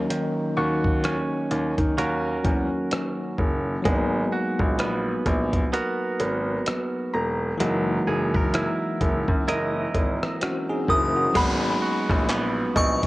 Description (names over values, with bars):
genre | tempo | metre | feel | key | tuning
contemporary R&B | 64 BPM | 4/4 | swing 58% on 16ths | G# minor | A4 = 440 Hz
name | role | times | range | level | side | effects
bell-like tine electric piano | accompaniment | 0.0-13.1 s | E3 to A#4 | -29 LUFS | left 2 dB | medium stereo tremolo, cassette tape
direct-recorded clean electric guitar | arpeggios | 0.0-13.1 s | D#3 to D#5 | -28 LUFS | right 2 dB | cassette tape, tape echo
downlifter and swell | sound effects | 0.0-13.1 s | none | -38 LUFS | right 1 dB | none
dusty soul sampler-style drum kit | drums | 0.1-13.1 s | crash cymbal, handclaps, hi-hat, kick drum, rim click | -26 LUFS | equal | vintage 12-bit sampler grit
clear grand piano | bass | 0.6-13.1 s | E1 to D#3 | -27 LUFS | equal | none
soft round pluck | texture | 0.6-13.1 s | D#5 to C#6 | -32 LUFS | left 1 dB | chorus, cassette tape, tape echo
glassy synth bell | melody | 10.9-13.1 s | B5 to D#6 | -25 LUFS | left 1 dB | chorus, phaser, cassette tape
room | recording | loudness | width
light reverb, digital ambience | home recording on cassette | -22 LUFS | side -19 dB against mid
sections
0.0-11.4 A section; 11.4-13.1 B section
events
none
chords
0.0 D#m7; 3.9 G#m9; 7.6 F#13; 11.4 G#m9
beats
| 0.10 1.04 1.98 2.92 | 3.85 4.79 5.73 6.67 | 7.60 8.54 9.48 10.41 | 11.35 12.29